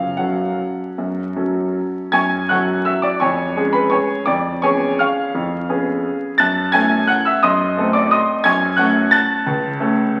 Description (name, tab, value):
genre	classical, piano waltz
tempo	147-186 BPM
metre	3/4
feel	rubato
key	F# minor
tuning	A4 = 440 Hz
part	clear upright piano	solo	0.0-10.2 s	C#2 to A6	-18 LUFS	equal	none
room	wet recital hall reverb, RT60 1.6 s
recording	very old 78 rpm record, vinyl crackle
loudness	-18 LUFS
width	mono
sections	0.0-2.1 A section; 2.1-10.2 A section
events	none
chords	0.0 F#m; 3.2 C#/E#; 4.3 C#7/E#; 6.4 F#m; 7.4 F#dim7; 8.5 F#m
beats	0.18 0.59 | 0.98 1.36 1.75 | 2.14 2.50 2.86 | 3.21 3.56 3.92 | 4.28 4.63 4.99 | 5.34 5.68 6.04 | 6.39 6.73 7.08 | 7.43 7.77 8.12 | 8.46 8.79 9.13 | 9.47 9.81 10.15